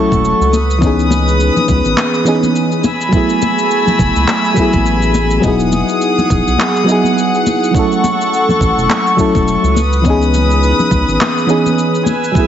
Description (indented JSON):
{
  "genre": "sunset chillout",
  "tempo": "104 BPM",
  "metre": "4/4",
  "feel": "swing 57% on 16ths",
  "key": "unclear",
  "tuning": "A4 = 440 Hz",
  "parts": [
    { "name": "mellow FM electric piano", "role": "accompaniment", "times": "0.0-12.5 s", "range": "E3 to A4", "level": "-14 LUFS", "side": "moving between left 4 dB and right 3 dB", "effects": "chorus, auto-pan, ping-pong delay" },
    { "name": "rich chamber string section", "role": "sustained chords", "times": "0.0-12.5 s", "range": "A3 to E6", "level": "-16 LUFS", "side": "left 1 dB", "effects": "none" },
    { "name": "round analog bass", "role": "bass", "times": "0.1-11.2 s", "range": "E1 to C#2", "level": "-15 LUFS", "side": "right 1 dB", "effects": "tube saturation" },
    { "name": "electronic kick drum", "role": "drums", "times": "0.1-12.5 s", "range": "none", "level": "-17 LUFS", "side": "equal", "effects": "none" },
    { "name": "electronic shaker and handclaps", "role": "drums", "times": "0.1-12.5 s", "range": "none", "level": "-23 LUFS", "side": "right 1 dB", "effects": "overdrive" },
    { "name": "congas", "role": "percussion", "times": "0.1-12.2 s", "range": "none", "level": "-20 LUFS", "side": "left 2 dB", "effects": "none" }
  ],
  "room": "wet plate reverb, RT60 2.3 s",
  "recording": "heavily compressed radio sound, nothing above 7.8 kHz",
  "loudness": "-10 LUFS",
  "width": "side -10 dB against mid",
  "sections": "0.0-12.5 A section",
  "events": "none",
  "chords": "0.0 A6; 0.5 C#m9; 2.8 F#m11; 5.4 Emaj9; 7.7 A6; 9.8 C#m9",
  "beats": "0.24 | 0.82 1.40 1.98 2.55 | 3.13 3.71 4.28 4.86 | 5.44 6.01 6.59 7.17 | 7.75 8.32 8.90 9.48 | 10.05 10.63 11.21 11.78 | 12.36"
}